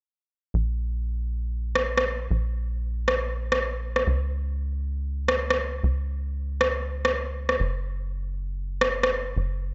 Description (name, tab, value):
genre	uplifting trance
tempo	136 BPM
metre	4/4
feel	straight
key	Bb minor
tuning	A4 = 439 Hz
part	tight sequencer bass	bass	0.5-9.7 s	Gb1 to Db2	-30 LUFS	equal	none
part	electronic rim click	drums	1.8-9.1 s	none	-26 LUFS	equal	none
room	light reverb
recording	nothing above 7.9 kHz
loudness	-27 LUFS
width	mono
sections	0.5-9.7 A section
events	none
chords	none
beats	| 0.54 0.98 1.42 1.86 | 2.31 2.75 3.19 3.63 | 4.07 4.51 4.95 5.39 | 5.84 6.28 6.72 7.16 | 7.60 8.04 8.48 8.92 | 9.37